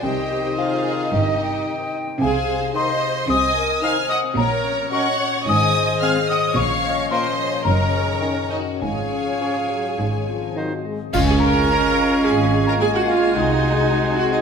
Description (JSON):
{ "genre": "cinematic, playful, whimsical film cue", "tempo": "109 BPM", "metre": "4/4", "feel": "straight", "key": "Db major", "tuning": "A4 = 443 Hz", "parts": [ { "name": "celesta", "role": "melody", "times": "0.0-14.4 s", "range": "Eb5 to F6", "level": "-26 LUFS", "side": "left 5 dB", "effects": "none" }, { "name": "rich studio violin section", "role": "melody", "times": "0.0-14.0 s", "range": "Eb5 to F6", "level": "-29 LUFS", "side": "left 1 dB", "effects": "none" }, { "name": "bright oboe", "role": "second line", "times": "0.0-14.4 s", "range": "Ab4 to Ab5", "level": "-32 LUFS", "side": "right 1 dB", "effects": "none" }, { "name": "mellow clarinet", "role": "second line", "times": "0.0-14.4 s", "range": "Bb3 to Gb5", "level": "-32 LUFS", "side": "left 1 dB", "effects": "none" }, { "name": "mellow hollow silver concert flute", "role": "second line", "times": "0.0-14.4 s", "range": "Bb4 to Db6", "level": "-28 LUFS", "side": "equal", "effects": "none" }, { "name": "rich studio violin section", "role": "second line", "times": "0.0-14.4 s", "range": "Gb4 to Bb5", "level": "-28 LUFS", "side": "left 2 dB", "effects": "none" }, { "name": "clear studio viola section", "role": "accompaniment", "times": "0.0-14.4 s", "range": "Eb4 to F5", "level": "-24 LUFS", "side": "right 3 dB", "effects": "none" }, { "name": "warm bassoon", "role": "accompaniment", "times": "0.0-14.4 s", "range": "Eb3 to Ab3", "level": "-30 LUFS", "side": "right 1 dB", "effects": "none" }, { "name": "concert harp", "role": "arpeggios", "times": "0.0-14.4 s", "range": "Gb2 to Eb6", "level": "-28 LUFS", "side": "left 8 dB", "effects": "none" }, { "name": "rich studio cello section", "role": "bass", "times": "0.0-14.4 s", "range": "Gb2 to Db4", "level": "-25 LUFS", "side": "right 3 dB", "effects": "none" }, { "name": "rich studio double bass section", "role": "bass", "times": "0.0-13.8 s", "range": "Gb1 to Db2", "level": "-25 LUFS", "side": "right 3 dB", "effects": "none" }, { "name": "mellow French horn section", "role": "sustained chords", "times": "0.6-14.4 s", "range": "Eb3 to Gb4", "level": "-30 LUFS", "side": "left 5 dB", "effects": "none" }, { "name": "clash cymbals and concert bass drum", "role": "percussion", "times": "11.1-12.2 s", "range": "none", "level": "-28 LUFS", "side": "equal", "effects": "none" } ], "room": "moderate scoring stage reverb, RT60 2.0 s", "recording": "none", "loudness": "-17 LUFS", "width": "side -6 dB against mid", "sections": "0.0-11.1 A section; 11.1-14.4 B section", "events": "band accent 11.1-11.7", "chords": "0.0 Cm; 2.2 Ab/C; 4.4 Gb/Bb; 5.5 Ab; 6.6 Bbm; 7.7 Ebm7/Gb; 8.8 Db/Ab; 10.0 Ab; 11.1 Db; 13.4 Ab7/C", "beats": "| 0.03 0.58 1.12 1.67 | 2.21 2.75 3.29 3.83 | 4.38 4.92 5.47 6.02 | 6.57 7.11 7.65 8.21 | 8.81 9.41 9.99 10.56 | 11.14 11.69 12.25 12.80 | 13.35 13.90" }